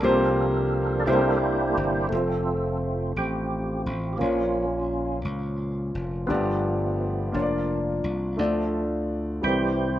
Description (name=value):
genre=slow gospel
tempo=57 BPM (dotted quarters)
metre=6/8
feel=straight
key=F major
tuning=A4 = 440 Hz
part: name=warm grand piano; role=accompaniment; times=0.0-10.0 s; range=G2 to D5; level=-26 LUFS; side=left 1 dB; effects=none
part: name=percussive tonewheel organ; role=sustained chords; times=0.0-10.0 s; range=E3 to D5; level=-28 LUFS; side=right 2 dB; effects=slow rotary speaker, chorus vibrato
part: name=slap bass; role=bass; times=0.0-10.0 s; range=F1 to D2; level=-29 LUFS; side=equal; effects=none
part: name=mellow French horn section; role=sustained chords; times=2.1-10.0 s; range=E3 to F4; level=-36 LUFS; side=left 1 dB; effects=none
room=light reverb, small room ambience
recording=rough home demo mix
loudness=-23 LUFS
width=side -12 dB against mid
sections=0.0-2.1 A section; 2.1-10.0 B section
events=tonewheel organ solo 0.0-2.1, 2.1-10.0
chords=0.0 C7sus4; 1.1 C7; 2.1 F; 4.2 Bbm; 6.3 G7; 7.3 Bb/F; 8.4 Dm; 9.4 C